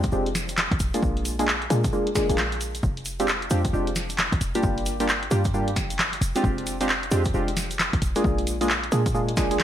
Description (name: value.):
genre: UK garage, two-step garage.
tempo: 133 BPM.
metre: 4/4.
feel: swing 62% on 16ths.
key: F dorian.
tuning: A4 = 440 Hz.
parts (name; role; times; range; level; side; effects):
short 808-style bass; bass; 0.0-9.6 s; F1 to Bb2; -27 LUFS; equal; tube saturation.
electronic kick drum; drums; 0.0-9.5 s; none; -27 LUFS; equal; none.
punchy analog drum machine; drums; 0.0-9.6 s; handclaps, hi-hat, snare drum; -26 LUFS; equal; none.
tube shaker; percussion; 0.0-9.6 s; none; -38 LUFS; right 2 dB; none.
deep mellow chord stab; stabs; 0.1-9.6 s; G3 to Ab4; -26 LUFS; equal; chorus, ping-pong delay.
room: light reverb.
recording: vinyl crackle.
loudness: -22 LUFS.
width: side -11 dB against mid.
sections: 0.0-9.6 A section.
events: none.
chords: 0.0 Fm69; 0.8 Bb7; 2.8 Fm69; 4.6 Gm7; 6.2 Fm69; 8.0 Bb7.